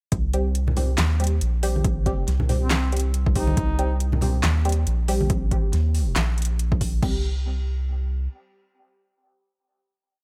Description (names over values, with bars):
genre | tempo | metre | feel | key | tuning
deep dubstep | 139 BPM | 4/4 | swing 57% on 16ths, half-time | C minor | A4 = 440 Hz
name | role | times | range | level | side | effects
soft dub sub bass | bass | 0.1-8.3 s | Bb1 to Eb2 | -25 LUFS | equal | none
deep house drum kit | drums | 0.1-7.1 s | crash cymbal, handclaps, hi-hat, snare drum | -31 LUFS | equal | overdrive
electronic kick drum | drums | 0.1-7.1 s | none | -27 LUFS | equal | overdrive
filtered dub chord stab | stabs | 0.3-10.2 s | G3 to G4 | -33 LUFS | equal | phaser, dub echo
congas | percussion | 0.7-5.3 s | none | -32 LUFS | equal | none
warm duduk | melody | 2.6-4.0 s | C4 to Eb4 | -35 LUFS | equal | dub echo
room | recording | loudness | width
digital ambience | none | -23 LUFS | mono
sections
0.1-7.0 drop; 7.0-10.2 final chord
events
drop 0.1-7.0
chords
0.1 C5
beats
| 0.12 0.55 0.98 1.41 | 1.85 2.28 2.71 3.14 | 3.57 4.00 4.44 4.87 | 5.30 5.73 6.16 6.59 | 7.03 7.46 7.89 8.32 | 8.75 9.18 9.62 10.05